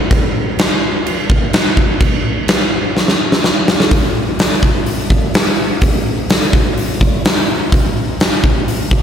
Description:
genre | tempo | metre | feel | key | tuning
rock | 126 BPM | 4/4 | straight | none | none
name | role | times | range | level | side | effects
huge arena drum kit | drums | 0.1-9.0 s | crash cymbal, hi-hat, kick drum, snare drum | -12 LUFS | equal | none
room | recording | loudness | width
moderate lush hall reverb, RT60 1.9 s | none | -12 LUFS | side -8 dB against mid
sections
0.0-3.9 A section; 3.9-9.0 B section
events
drum fill 3.0-3.9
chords
none

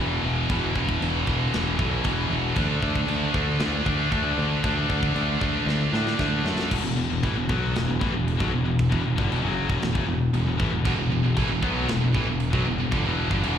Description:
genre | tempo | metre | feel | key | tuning
heavy metal | 116 BPM | 4/4 | straight | E minor from 6.7 s | A4 = 439 Hz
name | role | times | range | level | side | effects
heavy high-gain guitar | riff | 0.0-6.7, 10.9-13.6 s | E2 to D4 | -30 LUFS | right 15 dB | distortion
high-gain distorted guitar | riff | 0.0-13.6 s | E2 to D4 | -29 LUFS | right 1 dB | distortion
scooped high-gain guitar | riff | 0.0-13.6 s | E2 to D4 | -28 LUFS | left 8 dB | distortion, slapback echo
modern bright picked electric bass | bass | 0.0-13.6 s | E1 to A2 | -27 LUFS | equal | none
tight metal drum kit | drums | 0.5-13.6 s | china cymbal, crash cymbal, kick drum, snare drum | -30 LUFS | equal | none
room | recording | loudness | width
little or no reverb | live gig heard through the venue's PA, recital hall reverb | -22 LUFS | side -9 dB against mid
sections
0.0-6.7 A section; 6.7-13.6 B section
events
drum fill 5.7-6.7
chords
0.0 E5; 2.6 D5; 6.7 Em

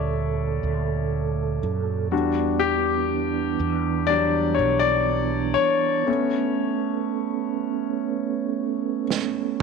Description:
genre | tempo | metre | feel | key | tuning
pop ballad | 60 BPM | 4/4 | straight | unclear | A4 = 440 Hz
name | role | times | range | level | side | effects
warm concert grand piano | accompaniment | 0.0-9.6 s | F#3 to E5 | -24 LUFS | left 8 dB | none
mellow tonewheel organ | sustained chords | 0.0-9.6 s | Bb2 to A4 | -26 LUFS | right 14 dB | fast rotary speaker
mellow fretless electric bass | bass | 0.0-5.5 s | B1 to F#2 | -27 LUFS | right 2 dB | ensemble chorus
unplugged drum kit | drums | 9.1-9.6 s | snare drum, toms | -26 LUFS | right 9 dB | none
room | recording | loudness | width
moderate plate reverb, RT60 2.8 s | 1960s-style stereo with parts hard left and right | -21 LUFS | side -5 dB against mid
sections
0.0-9.6 A section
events
grand piano solo 0.0-9.6; break 6.1-9.6; drum fill 9.1-9.6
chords
0.0 Gmadd9/D; 2.1 Em7; 6.1 Aadd9

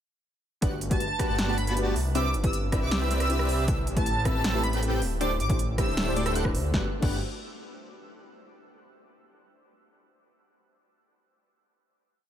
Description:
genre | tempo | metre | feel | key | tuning
future bass | 157 BPM | 4/4 | half-time | G major | A4 = 441 Hz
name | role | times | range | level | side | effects
soft round pluck | accompaniment | 0.6-7.2 s | A3 to C5 | -34 LUFS | left 2 dB | analog chorus, sidechain pumping, dub echo
airy dreamy lead | arpeggios | 0.6-7.2 s | D6 to A6 | -38 LUFS | right 2 dB | chorus, sidechain pumping, dub echo
dense compressed supersaw | riff | 0.6-7.2 s | B3 to A5 | -33 LUFS | equal | vintage 12-bit sampler grit, sidechain pumping, dub echo
wide detuned saw bass | bass | 0.6-7.2 s | D1 to D2 | -29 LUFS | equal | chorus, sidechain pumping
big-room dance drum kit | drums | 0.6-7.1 s | crash cymbal, hi-hat, rim click, snare drum | -33 LUFS | equal | overdrive
electronic kick drum | drums | 0.6-7.1 s | none | -28 LUFS | equal | overdrive
airy dreamy lead | melody | 0.9-6.0 s | A5 to E6 | -33 LUFS | right 1 dB | chorus, sidechain pumping, digital delay
room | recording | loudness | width
little or no reverb | none | -24 LUFS | side -10 dB against mid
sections
0.6-6.7 drop; 6.7-8.3 final chord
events
drop 0.6-6.7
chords
0.6 Gmaj7; 2.0 Cmaj9; 3.7 Am9; 5.0 D9sus4; 6.7 Gmaj7

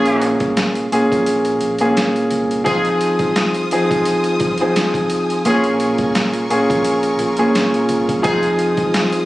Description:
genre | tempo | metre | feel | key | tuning
hip hop, boom-bap hip-hop | 86 BPM | 4/4 | swing 55% on 16ths | F minor | A4 = 441 Hz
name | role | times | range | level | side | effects
dark grand piano | accompaniment | 0.0-9.2 s | Bb2 to Ab4 | -16 LUFS | equal | none
warm horn section | stabs | 0.0-8.5 s | Db4 to Ab4 | -24 LUFS | equal | tape echo
deep dub fingered electric bass | bass | 0.0-8.9 s | F1 to C2 | -30 LUFS | equal | none
boom bap sampler-style drum kit | drums | 0.1-9.3 s | hi-hat, kick drum, snare drum | -22 LUFS | equal | none
warm studio string section | sustained chords | 2.7-9.3 s | F4 to Eb6 | -25 LUFS | equal | none
room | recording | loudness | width
light reverb | recorded on a phone in the room, studio reverb, vinyl crackle | -14 LUFS | side -17 dB against mid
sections
0.0-2.7 A section; 2.7-9.3 A section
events
kick muted 1.3-2.7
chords
0.0 Bbm7; 2.7 Fm7; 5.5 Bbm7; 8.2 Fm7

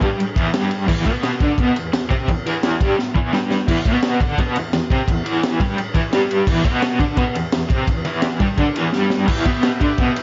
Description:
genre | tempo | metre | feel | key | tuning
garage rock duo or trio | 172 BPM | 4/4 | straight | E minor | A4 = 440 Hz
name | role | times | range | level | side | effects
raw garage guitar | riff | 0.0-10.2 s | E2 to D4 | -22 LUFS | equal | overdrive, tremolo
crunchy breakbeat drum kit | drums | 0.0-10.2 s | crash cymbal, kick drum, ride cymbal, snare drum | -22 LUFS | equal | none
combo organ | sustained chords | 9.3-10.2 s | G4 to E5 | -31 LUFS | equal | none
room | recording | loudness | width
light reverb | nothing above 7.6 kHz | -19 LUFS | mono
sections
0.0-10.2 A section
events
drum fill 3.0-3.7, 8.9-9.3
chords
0.0 Em

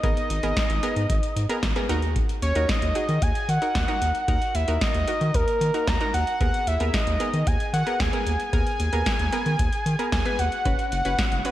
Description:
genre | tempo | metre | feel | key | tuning
synth-pop | 113 BPM | 4/4 | straight | G# minor | A4 = 439 Hz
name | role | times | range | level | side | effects
fat analog lead | melody | 0.0-11.5 s | A#4 to A#5 | -26 LUFS | equal | chorus, slapback echo
analog pluck | accompaniment | 0.0-11.5 s | B3 to B4 | -30 LUFS | right 1 dB | chorus, slapback echo
round analog bass | bass | 0.0-11.4 s | F#1 to D#3 | -25 LUFS | equal | none
electro analog drum machine | drums | 0.0-11.5 s | hi-hat, kick drum, snare drum | -26 LUFS | equal | none
room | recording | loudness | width
moderate lush hall reverb, RT60 1.7 s, digital ambience | big arena sound | -21 LUFS | side -14 dB against mid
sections
0.0-11.5 A section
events
none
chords
0.0 G#madd9; 1.9 D#m; 6.4 G#madd9/D#; 10.7 F#sus4

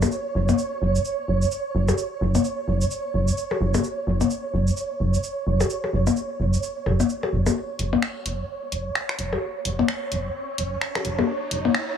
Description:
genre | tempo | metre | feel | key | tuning
minimal techno | 129 BPM | 4/4 | swing 60% on 16ths | unclear | A4 = 441 Hz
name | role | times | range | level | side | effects
rubbery square bass | bass | 0.0-11.7 s | F#1 | -22 LUFS | right 1 dB | none
house drum kit | drums | 0.0-11.9 s | cabasa, finger snaps, hi-hat | -30 LUFS | right 1 dB | high-pass filter on perc, high-pass filter on hats, high-pass filter on snare
percussion blips | percussion | 0.0-11.7 s | none | -25 LUFS | left 6 dB | none
flickering grainy texture | texture | 0.0-12.0 s | C#5 | -29 LUFS | right 4 dB | built-in reverb
riser | sound effects | 8.5-12.0 s | none | -38 LUFS | equal | none
room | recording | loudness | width
light reverb | high-pass filter | -22 LUFS | side -8 dB against mid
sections
0.0-7.6 A section; 7.6-12.0 B section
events
build-up 7.6-12.0; riser 8.5-12.0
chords
0.0 F#5

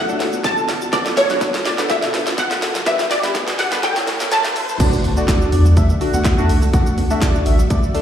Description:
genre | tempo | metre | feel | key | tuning
dance-pop | 124 BPM | 4/4 | straight | D major | A4 = 442 Hz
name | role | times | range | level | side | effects
wide unison pluck | melody | 0.0-4.8 s | C#5 to A5 | -20 LUFS | equal | ensemble chorus, slapback echo, ping-pong delay
ensemble organ-string | sustained chords | 0.0-8.0 s | C#3 to A4 | -30 LUFS | left 1 dB | ensemble chorus, sidechain pumping
analog pluck | arpeggios | 0.0-4.6 s | G3 to D5 | -32 LUFS | left 1 dB | none
twelve-string electric guitar | riff | 0.0-7.9 s | F#3 to D4 | -30 LUFS | right 5 dB | lush chorus, slapback echo
warm sub bass | bass | 0.0-7.9 s | D1 to B2 | -16 LUFS | equal | sidechain pumping
riser and impact | sound effects | 0.2-6.7 s | none | -29 LUFS | equal | slapback echo
warm analog keys | accompaniment | 0.1-8.0 s | F#3 to C#5 | -23 LUFS | equal | chorus, phaser, sidechain pumping, slapback echo
house drum kit | drums | 0.1-8.0 s | crash cymbal, handclaps, hi-hat, kick drum, shaker, snare drum | -20 LUFS | equal | none
airy dreamy lead | melody | 4.8-7.8 s | D5 to F#5 | -27 LUFS | left 2 dB | chorus, sidechain pumping, slapback echo, ping-pong delay
room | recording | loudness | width
light reverb | live gig heard through the venue's PA, recital hall reverb, high-pass filter | -15 LUFS | side -9 dB against mid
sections
0.0-4.8 A section; 4.8-8.0 B section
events
build-up 0.0-4.8; drum fill 0.0-4.8; riser 0.2-4.8; drop 4.8-8.0; impact 4.8-6.7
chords
0.0 D; 0.9 Bm7; 2.9 G; 3.8 A; 4.8 D

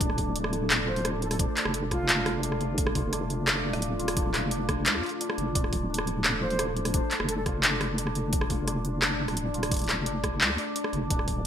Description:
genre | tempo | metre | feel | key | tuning
half-time drum and bass | 173 BPM | 4/4 | half-time | D minor | A4 = 440 Hz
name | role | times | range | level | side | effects
dark analog pad | sustained chords | 0.0-11.5 s | A3 to D5 | -34 LUFS | equal | chorus, sidechain pumping
santur | arpeggios | 0.0-11.5 s | D4 to D5 | -36 LUFS | equal | digital delay
deep soft wobble bass | bass | 0.0-11.5 s | D1 to D2 | -31 LUFS | equal | chorus
drum and bass drum kit | drums | 0.0-11.3 s | handclaps, hi-hat, rim click | -28 LUFS | equal | overdrive, gated reverb
electronic kick drum | drums | 0.0-11.3 s | none | -29 LUFS | equal | overdrive
concert flute | melody | 0.9-2.4, 6.4-7.4 s | F4 to C5 | -35 LUFS | equal | ping-pong delay
room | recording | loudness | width
moderate lush hall reverb, RT60 1.7 s | bright 1980s-style digital production | -25 LUFS | side -9 dB against mid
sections
0.0-11.5 A section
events
none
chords
0.0 D5

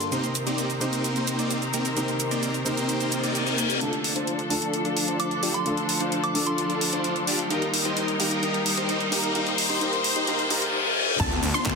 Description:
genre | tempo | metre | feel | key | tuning
EDM, festival progressive house | 130 BPM | 4/4 | straight | unclear | A4 = 440 Hz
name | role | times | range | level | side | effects
dark grand piano | accompaniment | 0.0-11.2 s | G2 to Bb4 | -31 LUFS | right 1 dB | sidechain pumping, ping-pong delay
clear symphonic string section | sustained chords | 0.0-11.2 s | Eb3 to C5 | -30 LUFS | left 3 dB | sidechain pumping
pop drum kit | drums | 0.0-11.8 s | crash cymbal, handclaps, hi-hat, shaker | -28 LUFS | right 1 dB | overdrive
big supersaw lead | riff | 0.1-11.7 s | Bb3 to D5 | -28 LUFS | equal | vintage 12-bit sampler grit, sidechain pumping, low-pass filter, ping-pong delay
reverse cymbal, riser and downlifter | sound effects | 3.1-11.8 s | none | -29 LUFS | left 3 dB | none
soft synth bell | melody | 5.2-6.9 s | C6 to D6 | -32 LUFS | right 1 dB | chorus, ping-pong delay
wide unison pluck | arpeggios | 11.2-11.7 s | A5 to C6 | -28 LUFS | equal | sidechain pumping
detuned saw bass | bass | 11.2-11.8 s | D2 | -28 LUFS | equal | sidechain pumping
electronic kick drum | drums | 11.2-11.8 s | none | -29 LUFS | equal | none
room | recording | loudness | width
moderate lush hall reverb, RT60 2.5 s | dense, heavily limited modern master, high-pass filter | -22 LUFS | side -4 dB against mid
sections
0.0-3.8 A section; 3.8-11.2 B section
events
reverse cymbal 3.1-3.8, 10.3-11.2; build-up 3.8-11.2; riser 3.8-11.2; filter sweep on supersaw synth 3.8-11.2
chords
0.1 Cm7; 3.8 Dm; 7.5 Eb; 11.2 Dm

